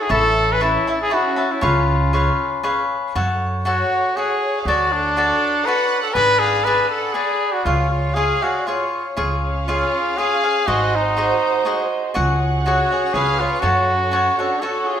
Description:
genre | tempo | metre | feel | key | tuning
mexican folk, mariachi | 120 BPM | 3/4 | swing 53% on 8ths | F# harmonic minor from 3.2 s | A4 = 440 Hz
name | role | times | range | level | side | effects
warm trumpet | melody | 0.0-15.0 s | D4 to B4 | -20 LUFS | equal | none
dark studio violin section | second line | 0.0-15.0 s | C#4 to G#5 | -27 LUFS | right 3 dB | none
cavaquinho | accompaniment | 0.0-15.0 s | D4 to B5 | -21 LUFS | left 2 dB | none
upright bass | bass | 0.1-14.3 s | G#1 to F#2 | -23 LUFS | right 1 dB | none
muted chamber violin section | sustained chords | 9.1-15.0 s | G#3 to F#5 | -29 LUFS | right 2 dB | none
room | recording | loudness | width
wet stone room reverb, RT60 1.4 s | band playing live in one room | -16 LUFS | side -9 dB against mid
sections
0.0-3.2 A section; 3.2-15.0 B section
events
none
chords
0.1 Aadd9; 1.6 C#7; 3.2 F#m; 4.7 Dmaj7; 6.2 G#dim; 7.7 C#; 10.7 G#7; 12.2 C#sus4; 13.1 C#7; 13.6 F#m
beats
| 0.12 0.62 1.12 | 1.63 2.13 2.65 | 3.15 3.66 4.17 | 4.66 5.16 5.66 | 6.16 6.66 7.15 | 7.65 8.16 8.66 | 9.17 9.67 10.17 | 10.67 11.16 11.66 | 12.15 12.64 13.14 | 13.63 14.12 14.62

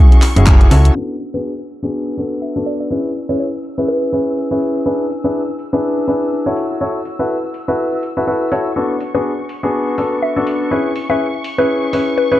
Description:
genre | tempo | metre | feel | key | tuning
piano house | 123 BPM | 4/4 | swing 57% on 16ths | B dorian | A4 = 439 Hz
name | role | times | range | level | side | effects
rich studio violin section | sustained chords | 0.0-12.4 s | C#6 to E6 | -32 LUFS | left 1 dB | sidechain pumping
clear grand piano | riff | 0.0-12.4 s | B3 to C#5 | -17 LUFS | left 1 dB | sidechain pumping, low-pass filter, digital delay
house drum kit | drums | 0.1-12.0 s | handclaps, hi-hat | -24 LUFS | equal | none
solid FM bass | bass | 0.4-0.9 s | F#1 to C#2 | -10 LUFS | equal | sidechain pumping
electronic kick drum | drums | 0.5-0.6 s | none | -8 LUFS | equal | none
downlifter | sound effects | 1.3-4.9 s | none | barely audible | none | none
mallet-like synth pluck | melody | 1.3-4.4, 9.1-12.4 s | B4 to E5 | -20 LUFS | left 1 dB | chorus, phaser, digital delay
room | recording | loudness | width
light reverb, digital ambience | dark, warm production, low-pass filter | -14 LUFS | side -14 dB against mid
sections
1.0-12.4 A section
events
band accent 0.5; filter sweep 1.0-12.4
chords
0.0 F#m7; 1.0 Bm7; 2.9 C#m7; 4.9 E7; 6.6 F#m7; 8.8 Bm7; 10.7 C#m7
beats
0.47 | 0.96 1.44 1.93 2.42 | 2.91 3.40 3.88 4.37 | 4.86 5.35 5.83 6.32 | 6.81 7.30 7.79 8.27 | 8.76 9.25 9.74 10.22 | 10.71 11.20 11.69 12.18

